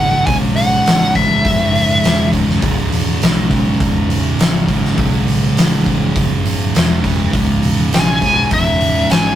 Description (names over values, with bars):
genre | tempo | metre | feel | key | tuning
stoner and doom metal | 102 BPM | 4/4 | straight | C# minor | A4 = 442 Hz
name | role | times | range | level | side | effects
fuzz lead guitar | melody | 0.0-2.3, 8.0-9.4 s | E5 to G#5 | -15 LUFS | left 1 dB | wah, distortion
tonewheel organ | sustained chords | 0.0-9.4 s | none | barely audible | none | none
thick fuzz guitar | riff | 0.0-9.4 s | C#2 to C#3 | -20 LUFS | left 2 dB | distortion
thick fuzz guitar | riff | 0.0-9.4 s | C#2 to C#3 | -19 LUFS | right 4 dB | distortion
fingered electric bass | bass | 0.0-9.4 s | C#1 to B1 | -20 LUFS | equal | overdrive
oversized low-tuned drum kit | drums | 0.3-9.2 s | hi-hat, kick drum, snare drum | -17 LUFS | equal | none
room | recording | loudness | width
light reverb | rough rehearsal-room recording, tube saturation | -12 LUFS | side -11 dB against mid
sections
0.0-9.4 A section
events
none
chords
0.0 C#m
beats
| 0.27 0.86 1.45 2.04 | 2.63 3.22 3.81 4.40 | 4.99 5.58 6.16 6.75 | 7.34 7.93 8.52 9.10